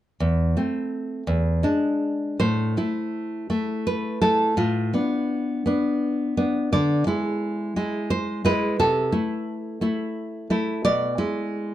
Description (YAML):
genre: romantic piece for solo classical guitar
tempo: 75-89 BPM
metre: 3/4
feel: rubato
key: A minor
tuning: A4 = 440 Hz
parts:
  - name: nylon-string guitar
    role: solo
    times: 0.2-11.7 s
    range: E2 to D5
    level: -22 LUFS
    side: equal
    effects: none
room: moderate small room reverb, RT60 0.5 s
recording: dark, warm production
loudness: -22 LUFS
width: side -13 dB against mid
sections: 0.2-2.4 A section; 2.4-11.7 B section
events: none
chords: 0.2 Am/E; 1.3 E7; 2.4 Am; 4.6 Bdim/A; 6.7 E7/D; 8.8 Am/C; 10.8 E7/B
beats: | 0.21 0.91 1.63 | 2.40 3.13 3.85 | 4.56 5.29 6.02 | 6.72 7.43 8.11 | 8.80 9.48 10.16 | 10.85 11.52